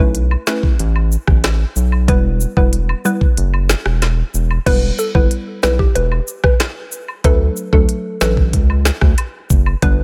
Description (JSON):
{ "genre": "dancehall", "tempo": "93 BPM", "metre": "4/4", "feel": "straight", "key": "E dorian", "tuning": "A4 = 440 Hz", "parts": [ { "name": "hollow square pluck", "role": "accompaniment", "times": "0.0-10.0 s", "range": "F#3 to B4", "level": "-22 LUFS", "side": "equal", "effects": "chorus" }, { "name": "round analog bass", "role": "bass", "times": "0.0-10.0 s", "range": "E1 to D2", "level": "-18 LUFS", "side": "equal", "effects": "none" }, { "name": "island pop drum kit", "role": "drums", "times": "0.1-10.0 s", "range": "crash cymbal, hi-hat, kick drum, rim click, snare drum", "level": "-17 LUFS", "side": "equal", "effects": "none" }, { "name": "woodblock and cabasa", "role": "percussion", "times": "0.3-9.8 s", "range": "none", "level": "-29 LUFS", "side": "equal", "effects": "none" }, { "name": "mallet-like synth pluck", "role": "melody", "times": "4.7-9.9 s", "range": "G4 to B4", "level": "-24 LUFS", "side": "equal", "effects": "chorus, phaser, tape echo" } ], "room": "little or no reverb", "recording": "none", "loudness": "-16 LUFS", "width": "mono", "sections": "0.0-4.7 A section; 4.7-10.0 B section", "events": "break 3.4-4.7", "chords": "0.0 Aadd9; 2.1 Em; 7.2 D", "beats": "0.15 0.79 1.44 | 2.08 2.73 3.37 4.02 | 4.66 5.31 5.96 6.60 | 7.25 7.89 8.54 9.18 | 9.83" }